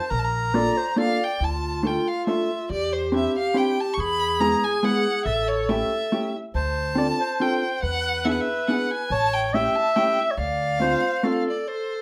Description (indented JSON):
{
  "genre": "musette",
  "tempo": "140 BPM",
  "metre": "3/4",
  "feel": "straight",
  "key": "D minor",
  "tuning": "A4 = 441 Hz",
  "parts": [
    { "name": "rich violin", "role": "melody", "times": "0.0-12.0 s", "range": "C5 to C#6", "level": "-29 LUFS", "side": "equal", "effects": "none" },
    { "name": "mellow clarinet", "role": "second line", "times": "0.0-12.0 s", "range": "F4 to E5", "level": "-28 LUFS", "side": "equal", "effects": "none" },
    { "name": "upright bass", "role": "bass", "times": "0.1-10.9 s", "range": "A1 to E2", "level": "-32 LUFS", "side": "equal", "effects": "none" },
    { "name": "vintage hollow-body jazz guitar", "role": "accompaniment", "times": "0.5-11.5 s", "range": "G#3 to A4", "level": "-27 LUFS", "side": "equal", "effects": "none" }
  ],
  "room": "wet small room reverb, RT60 0.6 s",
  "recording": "rough home demo mix",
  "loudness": "-23 LUFS",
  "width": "mono",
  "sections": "0.0-1.4 A section; 1.4-11.7 B section",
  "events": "none",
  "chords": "0.1 Bbmaj7; 1.4 Dm; 2.7 Cadd9/E; 4.0 E; 5.3 A7; 6.5 Dm7; 7.8 E7; 9.1 A7; 10.4 Dm7",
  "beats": "| 0.11 0.54 0.98 | 1.41 1.84 2.28 | 2.71 3.13 3.56 | 3.98 4.41 4.84 | 5.26 5.69 6.12 | 6.55 6.98 7.41 | 7.83 8.26 8.68 | 9.11 9.53 9.96 | 10.38 10.81 11.24 | 11.68"
}